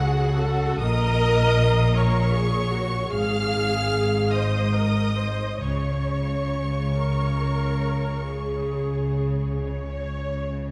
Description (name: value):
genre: classical, slow romantic movement for string orchestra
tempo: 43-53 BPM (dotted quarters)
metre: 12/8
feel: rubato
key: Db major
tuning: A4 = 441 Hz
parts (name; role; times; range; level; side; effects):
- rich studio violin section; melody; 0.0-9.6 s; Gb5 to F6; -34 LUFS; equal; none
- rich studio violin section; second line; 0.0-9.6 s; Gb4 to F5; -34 LUFS; equal; none
- clear studio viola section; accompaniment; 0.0-10.7 s; Gb4 to Db5; -30 LUFS; equal; none
- rich studio cello section; bass; 0.0-10.7 s; Ab2 to Db3; -29 LUFS; equal; none
- rich studio double bass section; bass; 0.0-10.7 s; Ab1 to Db2; -28 LUFS; equal; none
room: moderate concert hall reverb, RT60 2.4 s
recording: dark, warm production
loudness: -23 LUFS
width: mono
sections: 0.0-10.7 A section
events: none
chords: 0.0 Db5; 0.8 Bbm; 3.1 Ab5; 5.6 Db5